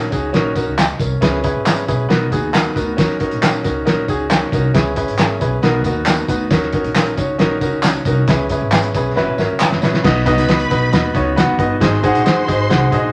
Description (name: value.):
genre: uptempo 1960s-style soul.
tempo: 136 BPM.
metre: 4/4.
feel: straight.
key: B major.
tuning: A4 = 440 Hz.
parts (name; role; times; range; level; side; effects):
clear grand piano; accompaniment; 0.0-13.1 s; B3 to F#5; -20 LUFS; equal; none.
upright bass; bass; 0.0-13.1 s; F#1 to D#2; -24 LUFS; equal; tube saturation.
cloth-damped thuddy drum kit; drums; 0.0-13.0 s; crash cymbal, hi-hat, kick drum, snare drum; -21 LUFS; equal; none.
tambourine and handclaps; percussion; 0.1-9.9 s; none; -24 LUFS; equal; none.
warm studio violin section; second line; 10.0-13.1 s; B4 to B#5; -26 LUFS; equal; none.
room: moderate studio reverb, RT60 0.8 s.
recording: none.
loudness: -16 LUFS.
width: mono.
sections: 0.0-10.0 A section; 10.0-13.1 B section.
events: drum fill 9.2-10.0.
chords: 0.0 D#m7; 1.2 C#m7; 2.1 Bmaj7; 3.0 D#m7; 4.7 C#m7; 5.6 Bmaj7; 6.5 D#m7; 8.3 C#m7; 9.2 F#7sus4; 10.0 B; 11.8 G#7.